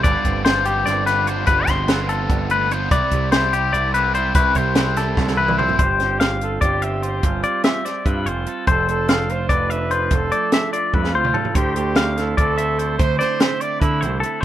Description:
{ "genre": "math rock and midwest emo", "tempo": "292 BPM (eighths)", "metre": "7/8", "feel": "straight", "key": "unclear", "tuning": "A4 = 440 Hz", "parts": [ { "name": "twelve-string electric guitar", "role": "accompaniment", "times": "0.0-14.4 s", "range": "C3 to D5", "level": "-29 LUFS", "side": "right 13 dB", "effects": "none" }, { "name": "twangy electric guitar", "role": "arpeggios", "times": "0.0-14.4 s", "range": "G4 to C6", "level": "-20 LUFS", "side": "left 4 dB", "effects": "spring reverb, digital delay" }, { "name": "overdriven electric guitar", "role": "riff", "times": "0.0-5.8 s", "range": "G2 to F4", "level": "-27 LUFS", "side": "right 4 dB", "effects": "none" }, { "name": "growling picked electric bass", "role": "bass", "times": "0.0-14.2 s", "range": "F1 to D3", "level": "-24 LUFS", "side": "equal", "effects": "overdrive" }, { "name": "compact cocktail drum kit", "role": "drums", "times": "0.0-14.3 s", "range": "hi-hat, kick drum, snare drum, toms", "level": "-20 LUFS", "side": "right 1 dB", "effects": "none" }, { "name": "warm trumpet", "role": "melody", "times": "5.2-14.2 s", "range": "E4 to D5", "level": "-25 LUFS", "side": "right 3 dB", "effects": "none" } ], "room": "small room ambience", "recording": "rough home demo mix", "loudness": "-16 LUFS", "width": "side -12 dB against mid", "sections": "0.0-5.8 A section; 5.8-14.4 B section", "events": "drum fill 5.2-5.8, 10.9-11.6", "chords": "0.0 G7sus4; 2.9 Cmaj7; 5.8 G7sus4; 8.7 F6; 11.6 Dm11" }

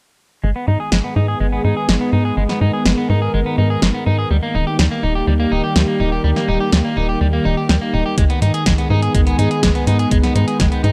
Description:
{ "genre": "italo disco", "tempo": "124 BPM", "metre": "4/4", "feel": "straight", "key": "G# harmonic minor", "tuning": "A4 = 440 Hz", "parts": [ { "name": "lush unison pad", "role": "sustained chords", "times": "0.8-10.9 s", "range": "D#3 to G5", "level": "-23 LUFS", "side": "equal", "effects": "chorus" }, { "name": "electric guitar at the edge of break-up", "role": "arpeggios", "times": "0.4-10.9 s", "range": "G3 to G#4", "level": "-25 LUFS", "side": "equal", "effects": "low-pass filter, tape echo" }, { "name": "tight sequencer bass", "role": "bass", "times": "0.4-10.9 s", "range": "D#1 to G#2", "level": "-20 LUFS", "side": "equal", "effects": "none" }, { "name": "house drum kit", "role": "drums", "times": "0.9-10.9 s", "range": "hi-hat, snare drum", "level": "-21 LUFS", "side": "equal", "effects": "studio reverb" }, { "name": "electronic kick drum", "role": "drums", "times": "8.2-10.7 s", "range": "none", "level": "-20 LUFS", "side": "equal", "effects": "studio reverb" } ], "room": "digital ambience", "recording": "dry, close 1970s-style studio recording", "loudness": "-17 LUFS", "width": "mono", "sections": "0.4-10.9 A section", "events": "none", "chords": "0.4 G#m; 4.3 D#; 8.2 G#m" }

